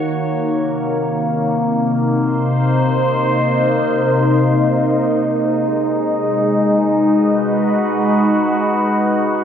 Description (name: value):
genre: ambient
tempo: free time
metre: none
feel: none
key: unclear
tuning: A4 = 440 Hz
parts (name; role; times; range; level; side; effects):
- evolving wavetable pad; solo; 0.0-9.4 s; C3 to C#5; -14 LUFS; equal; phaser, built-in reverb, diffuse ambient delay
room: wet cathedral reverb, RT60 7.4 s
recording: in a vast, echoing space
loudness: -14 LUFS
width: side -8 dB against mid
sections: 0.0-5.3 A section; 5.3-9.4 B section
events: none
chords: 0.0 D#m7; 0.5 Cm7; 5.3 G#m7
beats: free time